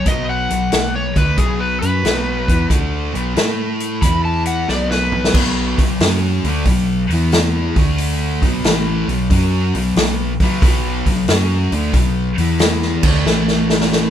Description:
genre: blues rock power trio and southern rock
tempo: 91 BPM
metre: 4/4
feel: swing 67% on 8ths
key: unclear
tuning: A4 = 441 Hz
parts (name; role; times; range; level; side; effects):
- overdriven slide guitar; melody; 0.0-5.3 s; G#4 to B5; -21 LUFS; left 1 dB; none
- thick fuzz guitar; riff; 0.0-14.1 s; A2 to A4; -19 LUFS; left 1 dB; distortion
- vintage muted fingered electric bass; bass; 0.0-14.1 s; A1 to A2; -21 LUFS; equal; none
- vintage drum kit; drums; 0.1-14.1 s; crash cymbal, hi-hat, kick drum, snare drum, toms; -17 LUFS; equal; none
room: moderate studio reverb, RT60 0.6 s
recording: band playing live in one room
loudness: -14 LUFS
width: side -10 dB against mid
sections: 0.0-5.3 A section; 5.3-14.1 B section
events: drum fill 4.7-5.3, 13.2-14.1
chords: 0.0 B5; 3.4 A5; 4.0 E5; 4.7 B5; 7.0 E5; 7.7 D5; 8.3 B5; 12.3 E5; 12.9 D5; 13.2 A5

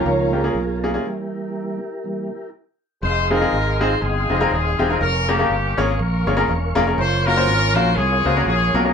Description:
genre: gospel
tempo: 121 BPM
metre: 4/4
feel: swing 57% on 8ths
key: F minor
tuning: A4 = 439 Hz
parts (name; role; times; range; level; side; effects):
- bright baby grand piano; accompaniment; 0.0-8.9 s; Ab3 to Db5; -20 LUFS; left 2 dB; none
- mellow tonewheel organ; sustained chords; 0.0-8.9 s; Eb3 to Db6; -26 LUFS; right 2 dB; fast rotary speaker, chorus vibrato
- muted studio string section; sustained chords; 0.0-1.0 s; Db5 to Bb5; -29 LUFS; equal; none
- fingered electric bass; bass; 0.0-8.9 s; Eb1 to Db2; -22 LUFS; equal; none
- warm horn section; melody; 3.0-8.9 s; Bb3 to C5; -21 LUFS; left 1 dB; none
room: wet studio ambience, RT60 0.4 s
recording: band playing live in one room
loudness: -17 LUFS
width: side -6 dB against mid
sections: 0.0-3.0 A section; 3.0-8.9 B section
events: tonewheel organ solo 0.0-3.0; stop 1.0-3.0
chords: 0.0 Db6; 1.0 Edim; 3.0 Fm7; 5.0 Bbm7/F; 7.0 Gbmaj7

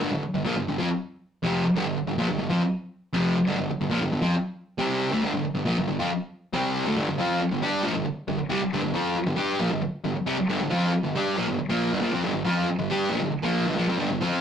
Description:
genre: rock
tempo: 137 BPM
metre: 4/4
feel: straight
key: G minor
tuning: A4 = 440 Hz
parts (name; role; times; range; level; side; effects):
- fuzz guitar; solo; 0.0-14.4 s; F2 to G4; -23 LUFS; equal; distortion
room: wet studio reverb, RT60 0.6 s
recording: rough rehearsal-room recording, tube saturation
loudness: -23 LUFS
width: side -8 dB against mid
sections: 0.0-7.0 A section; 7.0-14.4 B section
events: none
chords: 0.0 G5; 7.0 Gm

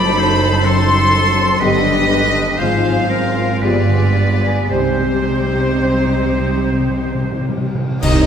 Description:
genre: classical, slow romantic movement for symphony orchestra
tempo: 53-65 BPM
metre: 3/4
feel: rubato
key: C minor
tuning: A4 = 440 Hz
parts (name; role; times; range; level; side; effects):
- warm symphonic violin section; melody; 0.0-8.3 s; C5 to C6; -22 LUFS; left 3 dB; none
- clear oboe; second line; 0.0-7.4 s; A4 to D5; -22 LUFS; right 1 dB; none
- flute section; second line; 0.0-7.5 s; C5 to C6; -23 LUFS; equal; none
- warm symphonic violin section; second line; 0.0-8.3 s; Eb4 to Eb5; -26 LUFS; left 2 dB; none
- dark symphonic viola section; accompaniment; 0.0-8.3 s; D3 to D#4; -22 LUFS; equal; none
- concert harp; arpeggios; 0.0-8.3 s; F#2 to D#5; -23 LUFS; left 5 dB; none
- rich symphonic cello section; bass; 0.0-8.3 s; F#2 to C3; -21 LUFS; right 2 dB; none
- rich symphonic double bass section; bass; 0.0-8.3 s; F#1 to C2; -21 LUFS; right 3 dB; none
- dark trombone section; sustained chords; 1.6-5.2 s; D3 to Ab3; -24 LUFS; right 2 dB; none
- mellow French horn section; sustained chords; 1.6-8.3 s; B3 to G4; -24 LUFS; left 2 dB; none
- cymbal swell, clash cymbals and concert bass drum; percussion; 4.7-8.3 s; none; -22 LUFS; right 1 dB; none
- timpani; percussion; 4.7-8.3 s; C3; -25 LUFS; right 1 dB; none
- mellow tuba; bass; 8.0-8.3 s; C2; -20 LUFS; right 6 dB; none
room: wet concert hall reverb, RT60 2.4 s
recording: minimal, uncompressed stereo recording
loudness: -13 LUFS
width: side -8 dB against mid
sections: 0.0-8.0 A section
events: timpani fill 4.7-8.0; band accent 8.0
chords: 0.0 F#dim7; 1.6 G; 2.6 Fm/Ab; 3.6 G7b9; 4.7 Cm

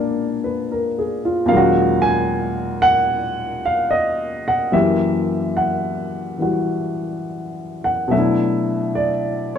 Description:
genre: solo jazz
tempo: 68-76 BPM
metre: 4/4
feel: swing 69% on 8ths, rubato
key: unclear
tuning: A4 = 442 Hz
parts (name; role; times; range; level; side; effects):
- warm upright piano; solo; 0.0-9.6 s; Eb2 to Ab5; -17 LUFS; equal; none
room: moderate studio reverb, RT60 0.7 s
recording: dark, warm production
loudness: -17 LUFS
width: side -8 dB against mid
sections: 0.0-8.1 A section; 8.1-9.6 B section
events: none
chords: 0.0 Bb7b9; 1.5 Ebm7; 4.7 Gb7b9; 8.1 Bm11

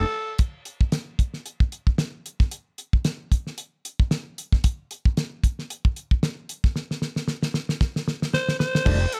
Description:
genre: funk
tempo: 113 BPM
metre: 4/4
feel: swing 56% on 16ths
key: unclear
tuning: A4 = 440 Hz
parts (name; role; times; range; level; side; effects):
- raspy alto saxophone; melody; 0.0-0.4, 8.3-9.2 s; A4 to C5; -28 LUFS; equal; none
- electric guitar at the edge of break-up; accompaniment; 0.0-0.1, 8.9-9.2 s; Eb4 to G5; -37 LUFS; equal; wah, analog chorus
- tonewheel organ; stabs; 0.0, 8.9-9.0 s; Eb3 to D4; -34 LUFS; equal; overdrive, chorus vibrato, slow rotary speaker, slapback echo
- fat analog bass; bass; 0.0, 8.9-9.1 s; F1; -24 LUFS; equal; none
- damped 70s drum kit; drums; 0.4-9.2 s; crash cymbal, hi-hat, kick drum, snare drum; -24 LUFS; equal; none
room: little or no reverb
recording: none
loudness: -25 LUFS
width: mono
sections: 0.4-8.9 A section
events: band accent 0.0-0.4; drum fill 6.8-8.9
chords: none

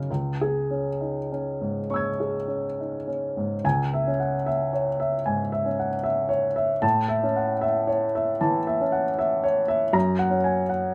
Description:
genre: neoclassical minimalist piano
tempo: 65-81 BPM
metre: 4/4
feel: rubato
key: C# minor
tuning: A4 = 440 Hz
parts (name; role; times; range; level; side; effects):
- warm upright piano; solo; 0.0-10.9 s; C#2 to G#6; -25 LUFS; equal; none
room: moderate studio reverb, RT60 0.5 s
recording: none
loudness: -25 LUFS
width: mono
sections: 0.0-3.6 A section; 3.6-10.9 A section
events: none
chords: 0.1 C#m; 6.8 A; 9.9 F#

